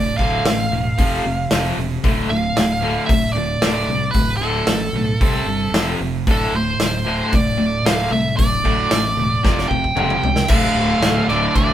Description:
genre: hard rock.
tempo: 113 BPM.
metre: 4/4.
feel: straight.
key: D minor.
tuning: A4 = 440 Hz.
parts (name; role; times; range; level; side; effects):
nasal lead guitar with a parked wah; melody; 0.0-11.7 s; A4 to G5; -21 LUFS; right 2 dB; overdrive.
crunchy overdriven guitar; riff; 0.0-11.7 s; D2 to C4; -23 LUFS; left 5 dB; tremolo.
high-gain distorted guitar; riff; 0.0-11.7 s; D2 to C4; -25 LUFS; right 6 dB; distortion.
fingered electric bass; bass; 0.0-11.7 s; D1 to D2; -25 LUFS; equal; none.
big rock drum kit; drums; 0.2-11.7 s; crash cymbal, hi-hat, kick drum, snare drum, toms; -20 LUFS; equal; none.
overdriven tonewheel organ; sustained chords; 10.5-11.7 s; D4 to F5; -33 LUFS; left 1 dB; none.
biting overdriven guitar; riff; 10.5-11.7 s; D2 to D3; -25 LUFS; equal; none.
room: moderate studio reverb, RT60 0.5 s.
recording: band playing live in one room.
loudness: -16 LUFS.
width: side -11 dB against mid.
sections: 0.0-10.5 A section; 10.5-11.7 B section.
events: drum fill 9.4-10.5.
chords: 0.0 Dm; 1.0 F5; 2.0 Dm; 5.2 C5; 5.7 F5; 6.3 D5; 9.4 F5; 10.5 Dm.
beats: 0.45 0.98 1.51 | 2.04 2.56 3.09 3.62 | 4.15 4.68 5.21 5.74 | 6.27 6.80 7.33 7.86 | 8.39 8.91 9.44 9.97 | 10.49 11.02 11.54.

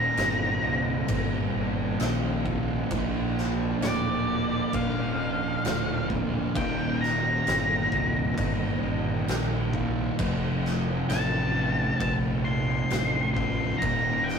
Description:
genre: stoner and doom metal.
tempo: 66 BPM.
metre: 4/4.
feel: straight.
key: unclear.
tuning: A4 = 440 Hz.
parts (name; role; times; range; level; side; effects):
octave-fuzz lead guitar; melody; 0.0-14.4 s; D5 to C6; -29 LUFS; equal; distortion, digital delay.
thick fuzz guitar; riff; 0.0-14.4 s; Eb2 to Bb3; -28 LUFS; right 1 dB; distortion.
fuzz fingered electric bass; bass; 0.0-14.4 s; C1 to Bb1; -31 LUFS; equal; overdrive.
oversized low-tuned drum kit; drums; 0.2-14.4 s; crash cymbal, kick drum, snare drum; -31 LUFS; equal; none.
room: moderate booth ambience, RT60 0.2 s.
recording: rough rehearsal-room recording.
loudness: -24 LUFS.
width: side -6 dB against mid.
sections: 0.0-14.4 A section.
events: none.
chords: 0.0 Eb; 2.9 Bb; 6.6 Eb; 10.2 F; 13.8 Eb.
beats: 0.18 1.09 2.00 | 2.91 3.82 4.73 5.64 | 6.55 7.46 8.37 9.28 | 10.19 11.10 12.01 12.91 | 13.82.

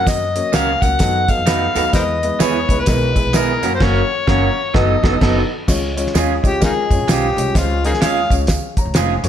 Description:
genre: uptempo 1960s-style soul.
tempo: 128 BPM.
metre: 4/4.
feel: swing 62% on 8ths.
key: Db major.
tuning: A4 = 440 Hz.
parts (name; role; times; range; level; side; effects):
overdriven harmonica; melody; 0.0-8.3 s; Eb4 to Gb5; -19 LUFS; left 2 dB; none.
dark upright piano; accompaniment; 0.0-9.3 s; Gb3 to Bb5; -22 LUFS; left 2 dB; none.
upright bass; bass; 0.0-9.3 s; F1 to Gb2; -21 LUFS; equal; none.
cloth-damped thuddy drum kit; drums; 0.1-9.3 s; crash cymbal, hi-hat, kick drum, snare drum; -19 LUFS; equal; none.
tambourine; percussion; 0.1-9.3 s; none; -31 LUFS; right 7 dB; none.
electric guitar through a small old amp; stabs; 0.5-9.1 s; Gb3 to Cb5; -22 LUFS; right 7 dB; slapback echo.
room: moderate large studio reverb, RT60 1.4 s.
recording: none.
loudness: -14 LUFS.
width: side -10 dB against mid.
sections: 0.0-5.7 A section; 5.7-9.3 B section.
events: band accent 3.8-5.7; harmonica solo 5.7-9.3.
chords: 0.0 Gb; 1.0 Cb7; 1.9 E; 3.6 Gb; 4.7 Cb7/Gb; 5.7 Db.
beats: | 0.07 0.53 1.00 1.47 | 1.94 2.40 2.87 3.34 | 3.81 4.28 4.74 5.21 | 5.68 6.15 6.62 7.08 | 7.55 8.02 8.49 8.95.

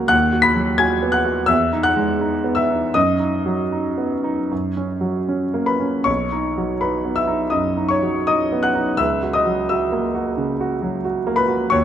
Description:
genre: classical, romantic character piece for solo piano.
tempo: 75-89 BPM.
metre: 4/4.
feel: rubato.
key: B major.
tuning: A4 = 441 Hz.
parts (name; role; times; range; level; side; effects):
clear concert grand piano; solo; 0.0-11.8 s; B1 to B6; -17 LUFS; equal; none.
room: moderate concert hall reverb, RT60 2.1 s.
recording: close, detailed microphones.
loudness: -17 LUFS.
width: side -10 dB against mid.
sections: 0.0-11.8 A section.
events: none.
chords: 0.1 B/D#; 1.5 Emaj7; 3.0 B/F#; 4.5 F#; 6.1 B; 9.0 F#7/C#.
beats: | 0.10 0.80 1.50 2.21 | 2.95 3.73 4.51 5.29 | 6.08 6.83 7.54 8.28 | 9.00 9.71 10.38 11.06 | 11.75.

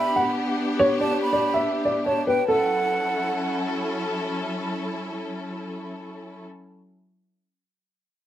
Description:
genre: hip hop.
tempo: 142 BPM.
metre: 4/4.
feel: half-time.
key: F# phrygian.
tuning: A4 = 439 Hz.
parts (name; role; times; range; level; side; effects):
dark upright piano; melody; 0.0-3.7 s; A4 to F#5; -23 LUFS; equal; low-pass filter, tape echo.
breathy hollow silver concert flute; second line; 0.0-3.7 s; F#5 to B5; -27 LUFS; right 4 dB; tape echo.
warm symphonic string section; sustained chords; 0.0-6.4 s; F#3 to A4; -27 LUFS; left 1 dB; none.
room: light reverb, small room ambience.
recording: echo-heavy mix.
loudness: -22 LUFS.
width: side -12 dB against mid.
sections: 0.0-2.5 A section; 2.5-5.9 B section.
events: none.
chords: 0.0 G; 2.5 F#m7.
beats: 0.37 | 0.79 1.22 1.64 2.06 | 2.48 2.90 3.33 3.75 | 4.17 4.59 5.02 5.44.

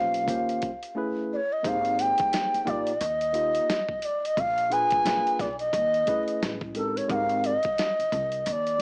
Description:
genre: hip hop, jazz-hop.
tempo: 88 BPM.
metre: 4/4.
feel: swing 60% on 16ths.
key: unclear.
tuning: A4 = 441 Hz.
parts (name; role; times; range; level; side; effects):
bright bass bansuri; melody; 0.0-8.8 s; A4 to Ab5; -27 LUFS; equal; none.
tine electric piano; accompaniment; 0.0-8.8 s; Bb2 to Eb5; -34 LUFS; equal; none.
upright bass; bass; 0.0-8.8 s; Ab1 to Eb2; -39 LUFS; equal; none.
boom bap sampler-style drum kit; drums; 0.1-8.8 s; hi-hat, kick drum, snare drum; -36 LUFS; equal; none.
room: light reverb, studio reverb.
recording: vinyl crackle, small speaker sound.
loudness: -26 LUFS.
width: mono.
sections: 0.0-8.8 A section.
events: drums muted 1.0-1.6.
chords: 0.3 Eb13; 1.0 Amaj9; 1.6 Abmaj9; 3.0 Eb; 4.4 Bb7b9; 5.7 Amaj9#11/D#; 6.4 Amaj9; 7.1 Abmaj9.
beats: 0.28 0.96 | 1.64 2.32 3.01 3.69 | 4.37 5.05 5.73 6.42 | 7.10 7.78 8.46.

